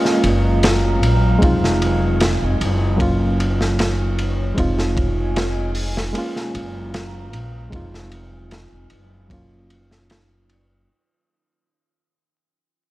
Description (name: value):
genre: trip hop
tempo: 76 BPM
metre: 4/4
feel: straight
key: F phrygian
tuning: A4 = 440 Hz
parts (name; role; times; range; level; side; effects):
- bright reed electric piano; accompaniment; 0.0-10.9 s; Gb3 to F4; -22 LUFS; right 1 dB; tremolo, tape echo
- deep dark ambient pad; sustained chords; 0.0-10.9 s; Gb3 to Bb5; -26 LUFS; equal; chorus, built-in reverb
- crunchy breakbeat drum kit; drums; 0.1-10.7 s; hi-hat, kick drum, ride cymbal, snare drum; -23 LUFS; equal; none
- upright bass; bass; 0.2-10.9 s; F1 to Bb1; -20 LUFS; equal; none
room: light reverb, small room ambience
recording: vinyl crackle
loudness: -16 LUFS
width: side -17 dB against mid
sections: 0.0-10.9 A section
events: fade-out 0.0-10.9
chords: 0.0 Gbmaj7; 1.4 Fm7; 3.0 Ebm7/Gb; 4.6 Fm7; 6.2 Gbmaj7; 7.7 Fm7; 9.3 Ebm7/Gb